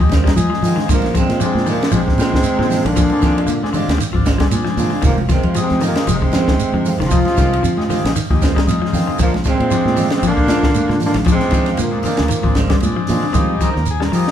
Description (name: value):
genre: afrobeat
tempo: 116 BPM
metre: 4/4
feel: swing 56% on 16ths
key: unclear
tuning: A4 = 440 Hz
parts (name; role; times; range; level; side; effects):
- combo organ; accompaniment; 0.0-14.3 s; G3 to Bb4; -25 LUFS; left 3 dB; none
- clean electric guitar; arpeggios; 0.0-14.3 s; D3 to G3; -23 LUFS; left 7 dB; none
- fingered electric bass; bass; 0.0-14.2 s; F1 to F3; -20 LUFS; equal; none
- compact cocktail drum kit; drums; 0.0-14.3 s; hi-hat, kick drum, ride cymbal, snare drum; -19 LUFS; equal; none
- clean electric guitar; stabs; 0.1-14.3 s; Eb3 to F4; -26 LUFS; right 4 dB; phaser
- congas; percussion; 0.1-13.2 s; none; -26 LUFS; right 3 dB; none
- shekere; percussion; 0.1-14.3 s; none; -26 LUFS; right 4 dB; none
- clear trombone; melody; 0.9-12.8 s; Bb3 to F4; -20 LUFS; right 1 dB; none
- clear alto saxophone; second line; 0.9-12.8 s; F3 to C4; -26 LUFS; right 1 dB; none
- edgy baritone saxophone; second line; 0.9-12.8 s; Bb2 to F3; -30 LUFS; left 4 dB; none
room: moderate large studio reverb, RT60 1.2 s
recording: band playing live in one room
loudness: -14 LUFS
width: side -10 dB against mid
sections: 0.0-13.3 A section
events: none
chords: 0.0 Fm7; 0.9 Bb7; 5.0 Fm7; 9.2 Bb7; 13.3 Fm7